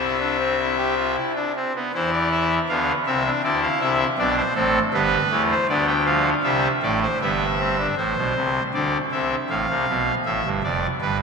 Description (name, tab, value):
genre	classical, baroque-style 3-part fugue for pipe organ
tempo	79 BPM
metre	4/4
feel	straight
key	C major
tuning	A4 = 440 Hz
part	pipe organ, trumpet	solo	0.0-11.2 s	F1 to G5	-19 LUFS	equal	none
room	wet cathedral reverb, RT60 4.8 s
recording	minimal, uncompressed stereo recording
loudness	-19 LUFS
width	side -5 dB against mid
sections	0.0-1.9 A section; 1.9-8.0 B section; 8.0-11.2 A section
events	none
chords	0.0 C; 1.9 C/E; 3.4 D7(no3); 4.9 G7; 6.4 C; 8.0 Am; 9.5 Dm7/A